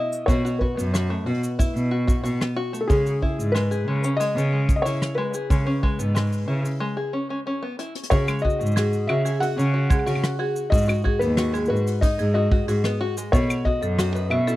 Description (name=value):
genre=folktronica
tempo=92 BPM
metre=4/4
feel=straight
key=unclear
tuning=A4 = 438 Hz
part: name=felt-muted upright piano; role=melody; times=0.0-14.6 s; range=G#4 to F#5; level=-27 LUFS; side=left 1 dB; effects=tape echo
part: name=open-back banjo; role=arpeggios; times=0.0-14.6 s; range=G#3 to B4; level=-29 LUFS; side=left 2 dB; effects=tape echo
part: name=soft brush drum kit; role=drums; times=0.1-14.6 s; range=cabasa, claves, hi-hat, rim click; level=-30 LUFS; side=left 1 dB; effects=none
part: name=rich cello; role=bass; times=0.3-14.4 s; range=D#2 to C#3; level=-24 LUFS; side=equal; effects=none
part: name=kick drum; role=drums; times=0.3-13.8 s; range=none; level=-21 LUFS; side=equal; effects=none
part: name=marimba with hard mallets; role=second line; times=8.1-14.6 s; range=G#4 to A4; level=-30 LUFS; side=right 1 dB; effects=tape echo
room=studio reverb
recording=dry, close 1970s-style studio recording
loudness=-20 LUFS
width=side -16 dB against mid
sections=0.0-8.1 A section; 8.1-14.6 B section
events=break 6.8-8.1; drum fill 7.8-8.1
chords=0.0 Bsus4; 2.9 C#m7; 8.1 C#sus4; 10.7 G#m7; 13.3 Bsus4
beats=| 0.29 0.94 1.59 2.24 | 2.90 3.55 4.20 4.85 | 5.50 6.16 6.81 7.46 | 8.11 8.77 9.42 10.07 | 10.72 11.38 12.03 12.68 | 13.33 13.98